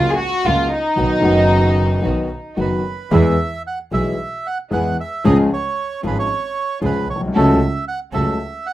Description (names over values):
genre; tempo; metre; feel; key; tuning
tango; 114 BPM; 4/4; rubato; E major from 3.1 s; A4 = 440 Hz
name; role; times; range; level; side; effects
warm studio violin section; second line; 0.0-2.6 s; D#4 to G#4; -18 LUFS; equal; none
warm concert grand piano; accompaniment; 0.0-8.4 s; F#1 to A4; -18 LUFS; left 1 dB; none
clear symphonic string section; stabs; 0.0-8.3 s; A#3 to A4; -31 LUFS; right 4 dB; none
clear double bass; bass; 0.0-8.3 s; F#1 to E2; -20 LUFS; right 2 dB; none
bandoneon; melody; 2.6-8.7 s; B4 to F#5; -24 LUFS; right 4 dB; none
room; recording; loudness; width
moderate studio ambience, RT60 0.5 s; rough home demo mix; -16 LUFS; side -14 dB against mid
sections
0.0-3.1 A section; 3.1-8.7 B section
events
violin section solo 0.0-3.1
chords
0.0 F#/C#; 1.0 B; 3.1 E; 5.2 C#; 7.3 F#m/C#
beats
0.46 | 0.98 1.51 2.04 2.58 | 3.12 3.65 4.18 4.71 | 5.25 5.78 6.30 6.82 | 7.35 7.87 8.39